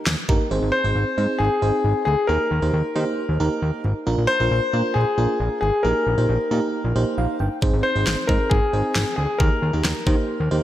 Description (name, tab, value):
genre	synth-pop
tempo	135 BPM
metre	4/4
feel	straight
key	Eb major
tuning	A4 = 439 Hz
part	fat analog bass	bass	0.1-10.6 s	G1 to Eb3	-22 LUFS	equal	none
part	pop drum kit	drums	0.1-0.4, 7.6-10.2 s	kick drum, snare drum	-22 LUFS	equal	none
part	FM electric piano with soft pad layer	accompaniment	0.3-10.6 s	Bb3 to G5	-25 LUFS	right 2 dB	chorus
part	warm grand piano	melody	0.7-10.6 s	Ab4 to C5	-23 LUFS	left 2 dB	none
room	moderate lush hall reverb, RT60 2.0 s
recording	big arena sound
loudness	-18 LUFS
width	side -12 dB against mid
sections	0.5-10.6 A section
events	FM electric piano fill 7.0-7.6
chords	0.0 Eb; 0.5 Ab; 2.3 Eb; 4.1 Bbadd9; 5.8 Eb/Bb; 7.6 Ab; 9.4 Eb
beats	0.07 | 0.51 0.96 1.40 1.84 | 2.29 2.73 3.18 3.62 | 4.07 4.51 4.96 5.40 | 5.84 6.29 6.73 7.18 | 7.62 8.07 8.51 8.96 | 9.40 9.85 10.29